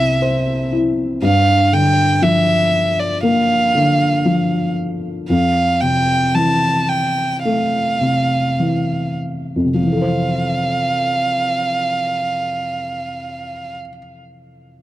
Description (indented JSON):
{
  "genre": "pop",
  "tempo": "50-60 BPM",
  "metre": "4/4",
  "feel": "straight",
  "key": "F major",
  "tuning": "A4 = 440 Hz",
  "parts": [
    { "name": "warm violin", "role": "melody", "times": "0.0-13.8 s", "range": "D5 to A5", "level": "-18 LUFS", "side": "right 2 dB", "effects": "none" },
    { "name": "felt-muted upright piano", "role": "accompaniment", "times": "0.0-14.8 s", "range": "C2 to C5", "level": "-18 LUFS", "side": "left 1 dB", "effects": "none" }
  ],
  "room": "light reverb",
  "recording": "dry, close 1970s-style studio recording",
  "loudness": "-15 LUFS",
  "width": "side -14 dB against mid",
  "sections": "0.0-1.2 A section; 1.2-9.8 B section; 9.8-14.6 C section",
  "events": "slowing down 1.2-9.8",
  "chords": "0.0 C; 1.2 Gm7; 5.3 Fmaj7"
}